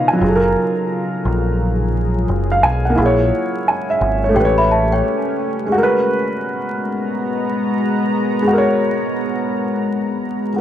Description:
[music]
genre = lo-fi hip hop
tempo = 87 BPM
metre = 4/4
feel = swing 62% on 16ths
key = G# dorian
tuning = A4 = 440 Hz
[part]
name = dark upright piano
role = accompaniment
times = 0.0-10.6 s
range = C#3 to G#5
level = -18 LUFS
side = right 1 dB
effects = plate reverb
[part]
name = deep dark ambient pad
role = sustained chords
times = 0.0-10.6 s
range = B2 to A#5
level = -21 LUFS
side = left 1 dB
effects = chorus, built-in reverb
[part]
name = deep dub picked electric bass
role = bass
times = 0.2-5.0 s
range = F#1 to B1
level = -18 LUFS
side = equal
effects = none
[part]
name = celesta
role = second line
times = 4.4-5.7 s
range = C#5 to B5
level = -19 LUFS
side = left 2 dB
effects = analog delay, plate reverb
[sound]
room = moderate studio reverb, RT60 0.5 s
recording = vinyl crackle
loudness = -15 LUFS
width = side -11 dB against mid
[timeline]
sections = 0.0-10.6 A section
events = none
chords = 0.2 F#maj9; 3.0 A#m7b5; 4.4 A9; 5.7 G#m9

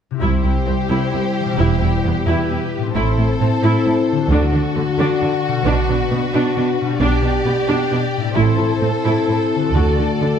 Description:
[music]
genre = cinematic, heroic adventure film score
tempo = 88 BPM (dotted quarters)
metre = 6/8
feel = straight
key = C lydian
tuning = A4 = 440 Hz
[part]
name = concert harp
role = arpeggios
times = 0.1-10.4 s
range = A2 to D5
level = -24 LUFS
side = left 9 dB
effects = none
[part]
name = rich symphonic violin section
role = melody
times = 0.2-10.4 s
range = A4 to D5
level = -30 LUFS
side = left 1 dB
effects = none
[part]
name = clear symphonic violin section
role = second line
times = 0.2-10.4 s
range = F#4 to A4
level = -24 LUFS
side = left 3 dB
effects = none
[part]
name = clear symphonic viola section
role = accompaniment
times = 0.2-10.3 s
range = A3 to F#4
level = -24 LUFS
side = right 1 dB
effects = none
[part]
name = mellow French horn section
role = sustained chords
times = 0.2-10.4 s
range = G3 to G4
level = -22 LUFS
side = left 2 dB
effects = none
[part]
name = rich studio double bass section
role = bass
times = 0.2-10.0 s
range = E1 to D2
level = -20 LUFS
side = right 3 dB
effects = none
[part]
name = warm symphonic cello section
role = bass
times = 0.2-10.3 s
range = C2 to D3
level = -22 LUFS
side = right 3 dB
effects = none
[sound]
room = moderate scoring stage reverb, RT60 1.5 s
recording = dark, warm production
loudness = -15 LUFS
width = side -8 dB against mid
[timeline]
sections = 0.2-10.4 A section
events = build-up 0.2-10.4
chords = 0.2 C; 1.6 Em; 2.9 Am; 4.3 D; 5.7 Bm; 7.0 G/B; 8.4 Am; 9.7 D

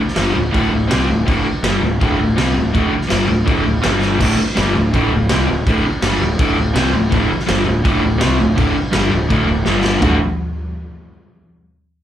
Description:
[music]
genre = garage rock duo or trio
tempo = 165 BPM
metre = 4/4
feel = straight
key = unclear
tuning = A4 = 438 Hz
[part]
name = raw garage drum kit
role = drums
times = 0.1-10.1 s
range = crash cymbal, kick drum, snare drum, toms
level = -19 LUFS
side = equal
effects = none
[part]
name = raw garage guitar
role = riff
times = 0.2-10.2 s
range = D2 to F#4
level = -16 LUFS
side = equal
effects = overdrive, slapback echo
[part]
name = fuzz fingered electric bass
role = bass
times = 0.2-10.2 s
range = D1 to C2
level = -20 LUFS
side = equal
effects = overdrive
[sound]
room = small room ambience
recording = live gig heard through the venue's PA, club reverb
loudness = -13 LUFS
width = side -11 dB against mid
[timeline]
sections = 0.0-4.2 A section; 4.2-10.0 A section; 10.0-11.5 B section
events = drum fill 4.0, 9.7-10.0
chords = 0.0 D5; 3.8 G5; 4.2 D5; 9.7 G5; 10.0 D

